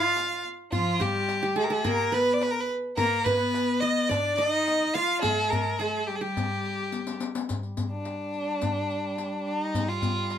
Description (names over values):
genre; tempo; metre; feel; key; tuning
Arabic maqam ensemble; 106 BPM; 4/4; straight; G maqam saba; A4 = 441 Hz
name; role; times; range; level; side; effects
rich violin; melody; 0.0-10.4 s; D4 to F5; -27 LUFS; right 1 dB; none
qanun; second line; 0.0-7.5 s; F4 to F5; -31 LUFS; right 2 dB; none
rich cello; second line; 0.0-7.2 s; F3 to F4; -30 LUFS; left 2 dB; none
darbuka; percussion; 0.2-10.4 s; none; -33 LUFS; left 2 dB; none
riq; percussion; 0.2-10.4 s; none; -36 LUFS; left 6 dB; none
mellow duduk; drone; 7.5-10.4 s; G3; -37 LUFS; right 1 dB; none
room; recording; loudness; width
wet studio reverb, RT60 0.5 s; minimal, uncompressed stereo recording; -24 LUFS; side -9 dB against mid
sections
0.0-7.5 A section; 7.5-10.4 B section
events
drum fill 6.9-7.5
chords
none